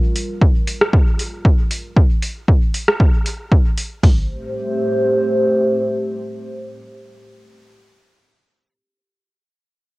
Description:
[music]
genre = dub techno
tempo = 116 BPM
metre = 4/4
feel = swing 54% on 16ths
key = A phrygian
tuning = A4 = 441 Hz
[part]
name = dark analog pad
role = sustained chords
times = 0.0-7.6 s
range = G3 to C5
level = -20 LUFS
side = equal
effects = lush chorus, sidechain pumping
[part]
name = deep house drum kit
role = drums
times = 0.2-3.9 s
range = hi-hat, rim click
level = -20 LUFS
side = equal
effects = overdrive, cassette tape
[part]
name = punchy analog drum machine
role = drums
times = 0.4-4.2 s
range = hi-hat, kick drum, toms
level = -13 LUFS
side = equal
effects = cassette tape
[sound]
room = light reverb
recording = home recording on cassette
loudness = -15 LUFS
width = side -22 dB against mid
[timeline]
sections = 0.0-4.0 A section; 4.0-8.2 B section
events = none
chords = 0.0 Gm7; 4.0 Am7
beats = 0.41 0.93 1.45 | 1.97 2.48 3.00 3.52 | 4.04 4.55 5.07 5.59 | 6.10 6.62 7.14

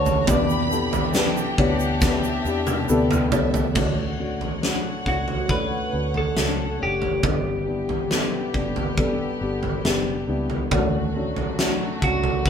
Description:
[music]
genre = pop ballad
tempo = 69 BPM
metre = 4/4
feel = straight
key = D major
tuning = A4 = 439 Hz
[part]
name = twelve-string electric guitar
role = melody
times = 0.0-12.5 s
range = F#4 to D5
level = -27 LUFS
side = right 1 dB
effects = none
[part]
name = warm studio violin section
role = second line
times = 0.0-3.7 s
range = D5 to B5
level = -31 LUFS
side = equal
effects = none
[part]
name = felt-muted upright piano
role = accompaniment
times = 0.0-12.5 s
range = G2 to D5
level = -26 LUFS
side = left 3 dB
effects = none
[part]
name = warm studio string section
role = sustained chords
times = 0.0-12.5 s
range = E3 to F#5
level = -32 LUFS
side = left 2 dB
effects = none
[part]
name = vintage muted fingered electric bass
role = bass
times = 0.0-12.5 s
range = F#1 to E2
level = -29 LUFS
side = equal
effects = none
[part]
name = huge arena drum kit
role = drums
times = 0.1-12.5 s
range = crash cymbal, kick drum, snare drum, toms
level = -24 LUFS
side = right 1 dB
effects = none
[part]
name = egg shaker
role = percussion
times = 0.1-3.8 s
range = none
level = -39 LUFS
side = right 7 dB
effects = none
[sound]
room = moderate studio reverb, RT60 0.8 s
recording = band playing live in one room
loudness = -20 LUFS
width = side -7 dB against mid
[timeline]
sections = 0.0-3.8 A section; 3.8-12.5 B section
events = drum fill 2.0-3.8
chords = 0.3 Em7; 3.8 Dmaj7; 7.2 G; 10.7 Dmaj7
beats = | 0.28 1.15 2.02 2.89 | 3.76 4.63 5.50 6.37 | 7.24 8.11 8.98 9.85 | 10.72 11.59 12.46

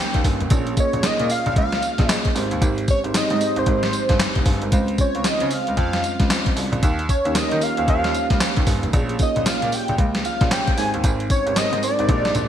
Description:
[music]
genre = R&B, new jack swing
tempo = 114 BPM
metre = 4/4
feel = swing 62% on 16ths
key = unclear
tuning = A4 = 440 Hz
[part]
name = wide unison lead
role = melody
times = 0.0-12.5 s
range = C5 to Ab5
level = -24 LUFS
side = equal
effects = none
[part]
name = bell-like tine electric piano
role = accompaniment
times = 0.0-12.5 s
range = Ab3 to Eb5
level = -26 LUFS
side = right 2 dB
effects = wide subtle chorus
[part]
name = clear concert grand piano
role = bass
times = 0.1-12.5 s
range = F1 to Eb3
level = -25 LUFS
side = right 1 dB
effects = none
[part]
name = gated 80s digital drum machine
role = drums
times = 0.1-12.5 s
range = handclaps, hi-hat, kick drum, snare drum, tambourine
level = -21 LUFS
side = left 1 dB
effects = gated reverb, gated reverb snare
[sound]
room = light reverb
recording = bright 1980s-style digital production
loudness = -18 LUFS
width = side -10 dB against mid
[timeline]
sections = 0.0-12.5 A section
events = none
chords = 0.0 Eb7; 0.5 Bbm7; 2.4 Abmaj7; 4.7 Dbmaj7; 6.8 Eb7; 8.9 Bbm7; 10.8 Abmaj7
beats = | 0.51 1.04 1.56 2.09 | 2.62 3.14 3.67 4.20 | 4.72 5.25 5.78 6.30 | 6.83 7.35 7.88 8.41 | 8.93 9.46 9.98 10.51 | 11.04 11.56 12.09

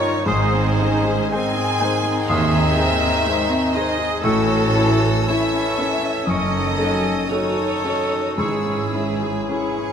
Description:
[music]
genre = classical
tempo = 54-63 BPM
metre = 4/4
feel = rubato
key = unclear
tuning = A4 = 440 Hz
[part]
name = rich studio violin section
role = melody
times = 0.0-9.9 s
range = B#5 to E6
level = -34 LUFS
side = left 3 dB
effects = none
[part]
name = warm grand piano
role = melody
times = 0.0-9.9 s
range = D#2 to C#5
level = -23 LUFS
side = left 2 dB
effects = none
[part]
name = rich chamber violin section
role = second line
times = 0.0-9.9 s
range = G#4 to G#5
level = -24 LUFS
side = equal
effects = none
[part]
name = warm clarinet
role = second line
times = 0.0-9.9 s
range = B#3 to G#4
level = -29 LUFS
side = left 2 dB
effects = none
[part]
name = warm studio viola section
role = accompaniment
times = 0.0-9.9 s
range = G#3 to A4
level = -28 LUFS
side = right 1 dB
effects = none
[part]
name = clear French horn section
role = sustained chords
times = 0.0-9.9 s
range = D#3 to D#4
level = -27 LUFS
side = left 4 dB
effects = none
[part]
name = clear trumpet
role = stabs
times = 0.0-9.9 s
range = G#4 to C#5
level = -28 LUFS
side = right 3 dB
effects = none
[part]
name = mellow flute section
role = second line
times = 0.3-8.9 s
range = D#6 to E6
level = -29 LUFS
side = left 1 dB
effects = none
[part]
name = warm oboe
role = second line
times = 0.3-8.8 s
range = B#5 to C#6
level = -32 LUFS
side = right 1 dB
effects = none
[part]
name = warm chamber cello section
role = bass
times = 0.3-9.3 s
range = D#2 to A2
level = -27 LUFS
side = right 3 dB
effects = none
[part]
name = warm studio double bass section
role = bass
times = 0.3-9.3 s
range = F#1 to D#2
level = -27 LUFS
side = right 4 dB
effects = none
[part]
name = timpani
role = percussion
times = 8.4-9.9 s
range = G#2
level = -33 LUFS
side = equal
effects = none
[sound]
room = moderate concert hall reverb, RT60 2.2 s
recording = none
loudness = -17 LUFS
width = side -7 dB against mid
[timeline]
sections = 0.0-9.9 A section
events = none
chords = 0.3 G#; 4.2 A; 6.3 D#m7b5/F#; 8.4 C#m/G#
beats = | 0.28 1.31 2.28 3.26 | 4.22 5.27 6.28 7.30 | 8.38 9.50

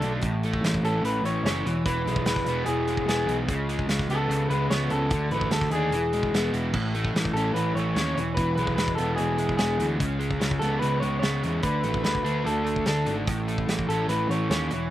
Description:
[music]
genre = indie rock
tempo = 147 BPM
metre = 4/4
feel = straight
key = A major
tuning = A4 = 441 Hz
[part]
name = electric guitar through a small old amp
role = melody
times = 0.0-14.9 s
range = G#4 to C#5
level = -28 LUFS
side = left 1 dB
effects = none
[part]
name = crunchy overdriven guitar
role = riff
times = 0.0-14.9 s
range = A2 to D4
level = -29 LUFS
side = equal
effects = none
[part]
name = fuzz picked electric bass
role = bass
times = 0.0-14.9 s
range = E1 to E2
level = -28 LUFS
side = equal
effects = overdrive
[part]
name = loose indie drum kit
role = drums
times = 0.0-14.8 s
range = crash cymbal, hi-hat, kick drum, snare drum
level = -30 LUFS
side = equal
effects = none
[sound]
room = little or no reverb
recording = recorded outdoors, with no room sound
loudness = -23 LUFS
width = side -13 dB against mid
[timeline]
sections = 0.0-6.7 A section; 6.7-14.9 A section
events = none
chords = 0.2 A; 1.6 E; 3.5 C#5; 5.1 D5; 5.9 E; 6.7 A; 8.2 E; 10.0 C#7(no3); 11.6 D5; 13.3 A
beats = | 0.23 0.63 1.04 1.45 | 1.85 2.26 2.66 3.07 | 3.48 3.88 4.29 4.70 | 5.10 5.51 5.92 6.33 | 6.73 7.14 7.55 7.96 | 8.36 8.77 9.18 9.59 | 10.00 10.40 10.81 11.22 | 11.63 12.04 12.45 12.86 | 13.27 13.68 14.09 14.50

